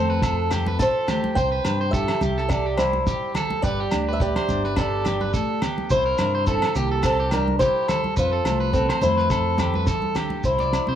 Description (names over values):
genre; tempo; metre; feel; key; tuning
highlife guitar band; 106 BPM; 4/4; swing 55% on 16ths; C major; A4 = 440 Hz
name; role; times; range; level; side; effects
fingerpicked swing-style acoustic guitar; melody; 0.0-11.0 s; Bb3 to A5; -24 LUFS; equal; analog delay
semi-hollow electric guitar; accompaniment; 0.0-11.0 s; C3 to B4; -32 LUFS; left 6 dB; none
electric guitar at the edge of break-up; arpeggios; 0.0-11.0 s; G4 to D5; -28 LUFS; right 3 dB; analog delay
fingered electric bass; bass; 0.0-11.0 s; G1 to C3; -26 LUFS; equal; none
cloth-damped thuddy drum kit; drums; 0.2-10.9 s; kick drum, snare drum; -28 LUFS; equal; none
agogo bells; percussion; 0.2-10.9 s; none; -33 LUFS; left 1 dB; none
congas; percussion; 0.2-11.0 s; none; -31 LUFS; right 2 dB; none
shekere; percussion; 0.2-10.9 s; none; -32 LUFS; right 3 dB; none
room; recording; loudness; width
light reverb; small room ambience; -20 LUFS; side -10 dB against mid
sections
0.0-10.4 A section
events
none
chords
0.0 F; 1.4 C; 3.6 G; 5.9 C7; 8.2 F; 10.4 C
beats
0.22 0.79 | 1.36 1.93 2.50 3.07 | 3.63 4.20 4.77 5.34 | 5.91 6.47 7.04 7.61 | 8.18 8.74 9.31 9.88 | 10.44